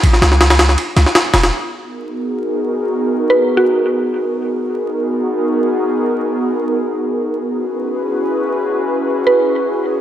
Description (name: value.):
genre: drum and bass, jungle.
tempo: free time.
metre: none.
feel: none.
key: G# minor.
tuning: A4 = 440 Hz.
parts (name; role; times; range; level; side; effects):
jungle sampler-style drum kit; drums; 0.0-1.5 s; kick drum, ride cymbal, snare drum; -12 LUFS; equal; none.
warm 808-style bass; bass; 0.2-1.5 s; E1 to C#2; -12 LUFS; equal; none.
airy breathy pad; sustained chords; 1.9-10.0 s; B3 to B4; -16 LUFS; equal; chorus, vintage 12-bit sampler grit.
mallet-like synth pluck; melody; 3.3-3.9, 9.3-9.5 s; F#4 to B4; -15 LUFS; right 2 dB; chorus, dub echo.
room: moderate lush hall reverb, RT60 2.5 s.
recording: dry, gritty hardware recording, vinyl crackle.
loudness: -14 LUFS.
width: side -11 dB against mid.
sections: 0.0-1.5 A section; 1.5-10.0 B section.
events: break 0.8-1.5; filter sweep on analog synth pad 1.5-10.0.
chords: 0.0 N.C.; 1.5 G#m9; 7.5 F#9sus4.